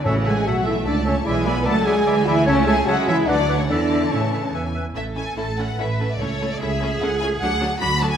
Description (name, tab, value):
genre	quick classical-period movement for symphony orchestra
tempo	148 BPM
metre	3/4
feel	rubato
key	A major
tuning	A4 = 440 Hz
part	mellow flute section	second line	0.0-4.8 s	F#5 to B5	-33 LUFS	left 5 dB	none
part	warm studio violin section	second line	0.0-8.1 s	D4 to B5	-29 LUFS	left 2 dB	none
part	mellow French horn section	sustained chords	0.0-4.5 s	C#4 to B4	-21 LUFS	left 1 dB	none
part	rich studio cello section	bass	0.0-8.2 s	C#3 to B4	-26 LUFS	right 3 dB	none
part	warm studio violin section	melody	0.1-8.2 s	C#5 to B5	-28 LUFS	left 3 dB	none
part	clear clarinet	second line	0.1-4.9 s	A4 to D5	-30 LUFS	left 1 dB	none
part	clear oboe	second line	0.1-4.8 s	D5 to E5	-31 LUFS	right 1 dB	none
part	warm studio viola section	accompaniment	0.1-8.1 s	E3 to D4	-28 LUFS	right 3 dB	none
part	warm studio double bass section	bass	0.1-8.2 s	A1 to C#3	-25 LUFS	right 2 dB	none
part	timpani	percussion	0.1-0.6 s	A2	-30 LUFS	equal	none
room	wet scoring stage reverb, RT60 1.6 s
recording	none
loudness	-18 LUFS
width	side -8 dB against mid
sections	0.0-5.0 A section; 5.0-8.2 B section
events	none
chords	0.1 A; 1.3 E7/B; 2.5 A/C#; 3.3 Bm/D; 3.7 A/E; 4.5 E; 5.0 A; 6.2 A/C#; 7.4 D